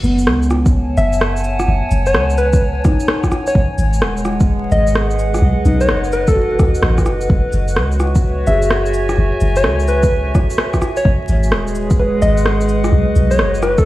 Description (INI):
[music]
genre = future garage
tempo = 128 BPM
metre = 4/4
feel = swing 65% on 16ths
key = F# dorian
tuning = A4 = 439 Hz
[part]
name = felt-muted upright piano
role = accompaniment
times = 0.0-13.1 s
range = B3 to C#5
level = -24 LUFS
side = equal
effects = sidechain pumping, analog delay
[part]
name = warbly tape-like pad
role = sustained chords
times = 0.0-13.9 s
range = G#3 to A5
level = -22 LUFS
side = right 1 dB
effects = chorus, built-in reverb, sidechain pumping
[part]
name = soft 808-style bass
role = bass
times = 0.0-13.9 s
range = D#1 to D#2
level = -16 LUFS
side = equal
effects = sidechain pumping
[part]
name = electronic cabasa, shaker and rim click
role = drums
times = 0.0-13.8 s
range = none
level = -20 LUFS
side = equal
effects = none
[part]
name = electronic kick drum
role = drums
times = 0.7-13.8 s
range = none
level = -14 LUFS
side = equal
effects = none
[part]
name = soft struck synth lead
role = melody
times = 1.0-13.9 s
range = A4 to E5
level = -20 LUFS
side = left 1 dB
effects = chorus, tremolo, tape echo
[sound]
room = light reverb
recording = played on a big sound system in a bare room, stone room reverb, vinyl crackle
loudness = -13 LUFS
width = side -16 dB against mid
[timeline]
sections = 0.0-13.9 A section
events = none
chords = 0.0 F#m; 3.6 G#m7; 5.4 B; 7.3 F#m7; 11.1 G#m7; 12.9 B